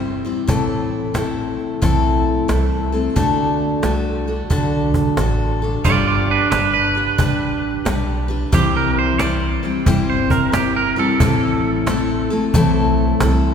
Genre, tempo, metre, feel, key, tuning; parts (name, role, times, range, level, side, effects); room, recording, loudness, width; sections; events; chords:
honky-tonk and classic country; 90 BPM; 4/4; swing 65% on 8ths; G major; A4 = 440 Hz
picked steel-string acoustic guitar; accompaniment; 0.0-13.5 s; A2 to C5; -19 LUFS; left 2 dB
upright bass; bass; 0.0-13.5 s; G1 to D2; -23 LUFS; right 1 dB
cajon; drums; 0.2-13.4 s; -23 LUFS; equal
twangy electric guitar; second line; 5.8-12.3 s; D4 to D5; -20 LUFS; right 5 dB
wet church reverb, RT60 3.6 s; recorded in a church or concert hall; -15 LUFS; side -7 dB against mid
0.0-5.8 A section; 5.8-13.5 B section
break 5.5-5.8; clean electric guitar solo 5.8-13.5
0.5 Am; 3.2 D; 5.8 G; 8.5 C; 11.2 Am